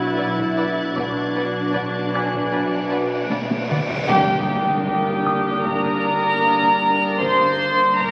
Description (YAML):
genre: cinematic, suspense film score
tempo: 77 BPM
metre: 4/4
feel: straight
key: G harmonic minor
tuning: A4 = 435 Hz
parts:
  - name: dark symphonic viola section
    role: accompaniment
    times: 0.0-8.1 s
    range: Bb3 to E4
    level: -30 LUFS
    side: equal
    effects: none
  - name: glassy FM pad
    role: sustained chords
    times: 0.0-8.1 s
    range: D4 to B4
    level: -31 LUFS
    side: equal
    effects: ensemble chorus, built-in reverb
  - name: dark symphonic double bass section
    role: bass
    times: 0.0-8.1 s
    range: G1 to B1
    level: -36 LUFS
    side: equal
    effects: none
  - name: warm symphonic cello section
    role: bass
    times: 0.0-8.1 s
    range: G2 to B2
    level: -36 LUFS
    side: equal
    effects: none
  - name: punchy sub bass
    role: drone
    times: 0.0-8.1 s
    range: G1 to B1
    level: -41 LUFS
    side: equal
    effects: none
  - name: warm symphonic violin section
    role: texture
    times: 0.0-8.1 s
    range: D6 to A6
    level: -34 LUFS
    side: equal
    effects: none
  - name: warm studio violin section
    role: melody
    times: 0.2-8.1 s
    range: F#5 to C6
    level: -24 LUFS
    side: equal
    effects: none
  - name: warm symphonic violin section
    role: second line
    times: 0.2-8.1 s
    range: G4 to D5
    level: -28 LUFS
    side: equal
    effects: none
  - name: taiko ensemble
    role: drums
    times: 0.4-8.1 s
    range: none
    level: -34 LUFS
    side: equal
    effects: none
  - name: cymbal swell and impact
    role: sound effects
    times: 2.2-7.2 s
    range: none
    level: -32 LUFS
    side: equal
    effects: none
  - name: music box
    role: texture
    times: 2.2-7.6 s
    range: Ab5 to Ab6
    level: -31 LUFS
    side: equal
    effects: none
  - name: dark trombone section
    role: sustained chords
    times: 4.1-8.1 s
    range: D3 to G3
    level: -31 LUFS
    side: equal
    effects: none
  - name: warm French horn section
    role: sustained chords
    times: 4.1-8.1 s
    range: Bb3 to Bb4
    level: -34 LUFS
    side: equal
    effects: none
  - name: timpani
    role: percussion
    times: 4.1-5.2 s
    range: none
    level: barely audible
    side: none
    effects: none
room: wet concert hall reverb, RT60 2.6 s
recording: very old 78 rpm record, vinyl crackle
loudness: -20 LUFS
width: mono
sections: 0.0-4.1 A section; 4.1-8.1 B section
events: cymbal swell 2.2-4.1; drum fill 3.3-4.1; band accent 4.1-4.9; impact 4.1-7.2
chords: 0.0 Bm; 4.1 Gm